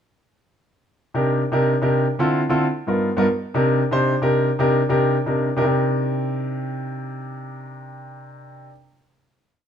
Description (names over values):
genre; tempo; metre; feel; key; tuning
jazz; 200 BPM; 4/4; straight; C minor; A4 = 443 Hz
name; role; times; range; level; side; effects
warm concert grand piano; solo; 1.1-8.7 s; G2 to C5; -19 LUFS; equal; none
room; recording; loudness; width
moderate stone room reverb, RT60 1.2 s; band playing live in one room; -18 LUFS; side -8 dB against mid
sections
0.8-5.6 A section; 5.6-8.1 final chord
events
none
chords
0.8 Cm9; 2.0 Dm7; 2.6 G7alt; 3.2 Cm9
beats
| 0.85 1.15 1.45 1.75 | 2.05 2.35 2.65 2.95 | 3.25 3.55 3.85 4.14 | 4.45 4.75 5.05 5.35 | 5.65 5.95 6.25 6.55 | 6.86 7.16 7.46 7.76